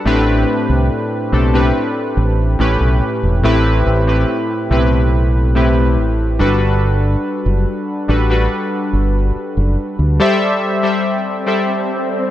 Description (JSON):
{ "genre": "contemporary R&B", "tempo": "71 BPM", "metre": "4/4", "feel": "straight", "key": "A dorian", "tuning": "A4 = 440 Hz", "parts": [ { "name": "warm analog keys", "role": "accompaniment", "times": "0.0-12.3 s", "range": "A2 to F#5", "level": "-16 LUFS", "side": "left 1 dB", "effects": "chorus" }, { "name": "deep dub fingered electric bass", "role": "bass", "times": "0.1-10.2 s", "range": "E1 to D2", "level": "-14 LUFS", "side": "equal", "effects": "none" }, { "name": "swell", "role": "sound effects", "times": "11.1-12.3 s", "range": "none", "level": "-24 LUFS", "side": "right 1 dB", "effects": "none" } ], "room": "light reverb, digital ambience", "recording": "dark, warm production", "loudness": "-13 LUFS", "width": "side -13 dB against mid", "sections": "0.1-12.3 A section", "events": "swell 11.1-12.3", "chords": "0.1 Am11; 2.6 A7; 3.4 Am9; 6.4 Gmaj9; 10.2 C69/G", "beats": "| 0.06 0.90 1.75 2.59 | 3.44 4.28 5.13 5.97 | 6.82 7.67 8.51 9.36 | 10.20 11.04 11.89" }